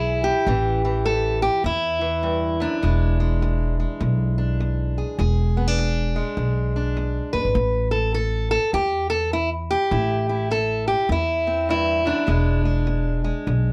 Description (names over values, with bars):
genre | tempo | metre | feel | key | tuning
acoustic country blues, solo or duo | 101 BPM | 4/4 | swing 62% on 8ths | E mixolydian | A4 = 440 Hz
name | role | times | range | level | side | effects
fingerpicked steel-string acoustic guitar | melody | 0.0-13.7 s | E2 to B4 | -25 LUFS | equal | none
upright bass | bass | 0.0-13.7 s | E1 to E2 | -25 LUFS | equal | none
room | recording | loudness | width
light reverb | none | -22 LUFS | mono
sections
0.0-13.7 A section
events
none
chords
0.5 A5; 2.8 E7; 7.6 A5; 12.3 E7